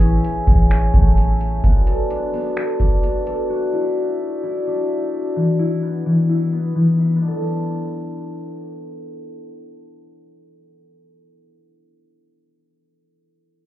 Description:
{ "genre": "hip hop, atmospheric cloud-rap", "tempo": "129 BPM", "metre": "4/4", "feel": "half-time", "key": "B dorian", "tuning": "A4 = 440 Hz", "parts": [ { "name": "glass harmonica", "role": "sustained chords", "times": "0.0-5.3 s", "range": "F#4 to G#5", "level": "-24 LUFS", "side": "left 1 dB", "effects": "sidechain pumping, low-pass filter" }, { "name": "concert harp", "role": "arpeggios", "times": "0.0-11.6 s", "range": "E3 to A4", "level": "-22 LUFS", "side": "left 2 dB", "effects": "low-pass filter, ping-pong delay" }, { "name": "soft 808-style bass", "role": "bass", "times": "0.0-1.6 s", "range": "A1", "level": "-15 LUFS", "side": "equal", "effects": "none" }, { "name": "booming analog drum machine", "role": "drums", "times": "0.0-3.4 s", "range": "finger snaps, hi-hat, kick drum", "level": "-15 LUFS", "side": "equal", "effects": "overdrive, vintage 12-bit sampler grit" } ], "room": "little or no reverb", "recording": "heard muffled through a wall, club reverb, EQ", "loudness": "-16 LUFS", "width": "side -13 dB against mid", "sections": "0.0-7.2 A section; 7.2-10.9 B section", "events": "filter sweep 0.0-7.2", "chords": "0.0 Amaj7; 1.6 Bm7; 3.5 Dadd9; 5.4 E5; 7.2 Bm7", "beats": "0.24 0.71 1.17 | 1.64 2.10 2.57 3.03 | 3.50 3.96 4.43 4.89 | 5.36 5.82 6.29 6.75 | 7.22 7.68 8.15 8.62 | 9.08 9.54 10.01 10.47" }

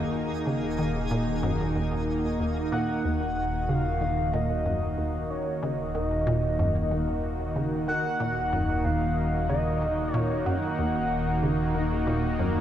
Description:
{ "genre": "ambient, sequencer-driven space music", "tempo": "93 BPM", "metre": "4/4", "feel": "straight", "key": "Eb minor", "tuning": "A4 = 440 Hz", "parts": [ { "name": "lush unison pad", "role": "sustained chords", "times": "0.0-12.6 s", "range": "Eb3 to Gb4", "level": "-29 LUFS", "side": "equal", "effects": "chorus" }, { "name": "fat analog bass", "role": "bass", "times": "0.0-12.6 s", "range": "Eb1", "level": "-32 LUFS", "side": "equal", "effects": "none" }, { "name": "twinkling granular texture", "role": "texture", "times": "0.0-3.1 s", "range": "Eb4 to Ab4", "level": "-40 LUFS", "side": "right 1 dB", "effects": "built-in reverb" }, { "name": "resonant blip pluck", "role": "riff", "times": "0.5-12.6 s", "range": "Eb2 to Eb3", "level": "-30 LUFS", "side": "equal", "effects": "chorus, cassette tape, tape echo" }, { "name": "pulse-width lead", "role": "melody", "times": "2.7-11.7 s", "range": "Db5 to Gb5", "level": "-31 LUFS", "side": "left 1 dB", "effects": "chorus, tape echo" } ], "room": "wet lush hall reverb, RT60 2.9 s", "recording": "none", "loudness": "-25 LUFS", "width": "side -10 dB against mid", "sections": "0.0-3.0 A section; 3.0-12.6 B section", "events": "none", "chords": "0.0 Ebm", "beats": "| 0.46 1.11 1.75 2.40 | 3.04 3.69 4.33 4.98 | 5.62 6.27 6.92 7.56 | 8.21 8.85 9.49 10.14 | 10.79 11.43 12.08" }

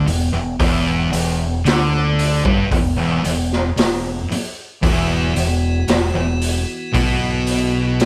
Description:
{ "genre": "stoner and doom metal", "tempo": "57 BPM", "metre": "4/4", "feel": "straight", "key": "unclear", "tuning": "A4 = 440 Hz", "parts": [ { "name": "thick fuzz guitar", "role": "riff", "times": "0.0-8.1 s", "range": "E2 to D3", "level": "-24 LUFS", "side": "equal", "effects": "distortion" }, { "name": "thick fuzz guitar", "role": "riff", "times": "0.0-8.1 s", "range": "E2 to D3", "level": "-24 LUFS", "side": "equal", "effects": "distortion" }, { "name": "growling fingered electric bass", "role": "bass", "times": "0.0-8.1 s", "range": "E1 to D2", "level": "-25 LUFS", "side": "equal", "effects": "overdrive" }, { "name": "raw garage drum kit", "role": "drums", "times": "0.1-8.1 s", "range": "hi-hat, kick drum, snare drum", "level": "-23 LUFS", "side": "equal", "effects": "none" }, { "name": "tonewheel organ", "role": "sustained chords", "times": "4.8-8.1 s", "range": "E3 to F#4", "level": "-29 LUFS", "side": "equal", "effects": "slow rotary speaker, overdrive" } ], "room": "light reverb", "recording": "band playing live in one room", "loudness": "-18 LUFS", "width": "mono", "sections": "0.0-8.1 A section", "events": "none", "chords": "0.0 E5", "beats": "| 0.59 1.65 2.71 3.76 | 4.82 5.88 6.94 8.00" }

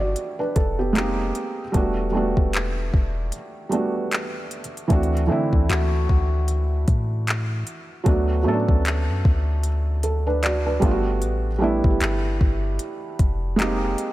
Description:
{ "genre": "contemporary R&B", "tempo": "76 BPM", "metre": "4/4", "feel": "swing 58% on 16ths", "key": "unclear", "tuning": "A4 = 440 Hz", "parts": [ { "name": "felt-muted upright piano", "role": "accompaniment", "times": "0.0-14.1 s", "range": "E3 to D5", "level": "-24 LUFS", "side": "right 2 dB", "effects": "none" }, { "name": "clean 808-style bass", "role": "bass", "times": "0.0-14.0 s", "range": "E1 to D3", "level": "-23 LUFS", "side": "equal", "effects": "none" }, { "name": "smooth R&B drum kit", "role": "drums", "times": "0.2-14.1 s", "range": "handclaps, hi-hat, kick drum", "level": "-23 LUFS", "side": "equal", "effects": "none" }, { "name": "handpan", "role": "texture", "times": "5.7-13.8 s", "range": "E4 to G4", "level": "-33 LUFS", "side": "left 2 dB", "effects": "tape echo" } ], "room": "small room ambience", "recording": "none", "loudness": "-20 LUFS", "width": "side -16 dB against mid", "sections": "0.0-4.9 A section; 4.9-14.1 B section", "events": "break 3.3-4.9", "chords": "0.0 Gmaj7; 1.0 Fm11; 1.7 Em11; 4.9 D7; 8.1 Bm7/D; 10.8 Gmaj7; 13.6 Fm11", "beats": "0.17 0.96 | 1.75 2.54 3.33 4.12 | 4.90 5.69 6.48 7.27 | 8.06 8.85 9.64 10.43 | 11.22 12.01 12.80 13.59" }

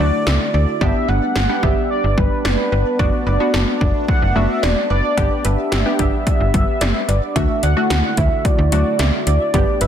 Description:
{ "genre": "synth-pop", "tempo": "110 BPM", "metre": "4/4", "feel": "straight", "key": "D major", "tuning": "A4 = 440 Hz", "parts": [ { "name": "warm velvety synth lead", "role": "melody", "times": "0.0-9.9 s", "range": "B4 to F#5", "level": "-22 LUFS", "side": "equal", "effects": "chorus, digital delay" }, { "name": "funky polysynth comp", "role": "accompaniment", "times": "0.0-9.9 s", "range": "A3 to G4", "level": "-23 LUFS", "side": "left 1 dB", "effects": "chorus" }, { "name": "sweeping resonant pad", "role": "sustained chords", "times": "0.0-9.9 s", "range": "D3 to F#4", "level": "-26 LUFS", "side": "right 3 dB", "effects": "chorus, phaser" }, { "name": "wide unison pluck", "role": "arpeggios", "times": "0.0-9.9 s", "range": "F#3 to E5", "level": "-28 LUFS", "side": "right 3 dB", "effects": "digital delay" }, { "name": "slap-like FM bass", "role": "bass", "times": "0.0-9.9 s", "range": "E1 to D2", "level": "-18 LUFS", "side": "equal", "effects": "none" }, { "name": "80s electronic pad drums", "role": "drums", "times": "0.3-9.9 s", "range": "hi-hat, kick drum, snare drum", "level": "-20 LUFS", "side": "equal", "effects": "overdrive" } ], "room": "light reverb", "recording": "dense, heavily limited modern master", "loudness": "-15 LUFS", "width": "side -9 dB against mid", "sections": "0.0-9.9 A section", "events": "none", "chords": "0.0 Dadd9; 0.8 G; 3.0 Bm7/F#; 5.2 G; 7.4 Dadd9", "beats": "0.27 | 0.81 1.36 1.90 2.45 | 2.99 3.54 4.08 4.63 | 5.18 5.72 6.27 6.81 | 7.36 7.90 8.45 8.99 | 9.54" }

